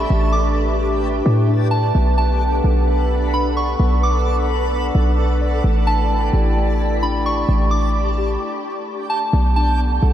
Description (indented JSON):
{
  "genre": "hip hop",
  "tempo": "130 BPM",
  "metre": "4/4",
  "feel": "half-time",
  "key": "B minor",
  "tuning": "A4 = 440 Hz",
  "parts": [
    { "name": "soft synth bell", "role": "melody", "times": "0.0-9.8 s", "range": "A5 to D6", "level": "-24 LUFS", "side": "right 1 dB", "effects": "chorus, analog delay" },
    { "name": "warbly tape-like pad", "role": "sustained chords", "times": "0.0-10.1 s", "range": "B3 to G5", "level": "-24 LUFS", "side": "right 1 dB", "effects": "chorus, built-in reverb" },
    { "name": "muted felt-like synth keys", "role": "arpeggios", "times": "0.0-10.1 s", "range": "A3 to D5", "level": "-27 LUFS", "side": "left 5 dB", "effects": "chorus, analog delay" },
    { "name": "warm 808-style bass", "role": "bass", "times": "0.0-10.1 s", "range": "A1 to A2", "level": "-17 LUFS", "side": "equal", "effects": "none" },
    { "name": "backwards swelling texture", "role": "texture", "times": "0.0-10.1 s", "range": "D4 to B5", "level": "-30 LUFS", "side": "left 1 dB", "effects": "built-in reverb, wide subtle chorus" }
  ],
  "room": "moderate huge ambient reverb, RT60 8.5 s",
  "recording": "dreamy mix soaked in reverb",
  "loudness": "-16 LUFS",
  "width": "side -11 dB against mid",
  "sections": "0.0-9.3 A section",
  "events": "stop 8.4-9.3",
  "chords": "0.0 A7sus4; 1.9 Bm7; 5.6 A7sus4; 9.3 Bm7",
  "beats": "| 0.10 0.56 1.03 1.49 | 1.95 2.41 2.87 3.33 | 3.79 4.26 4.72 5.18 | 5.64 6.10 6.56 7.03 | 7.49 7.95 8.41 8.87 | 9.33 9.79"
}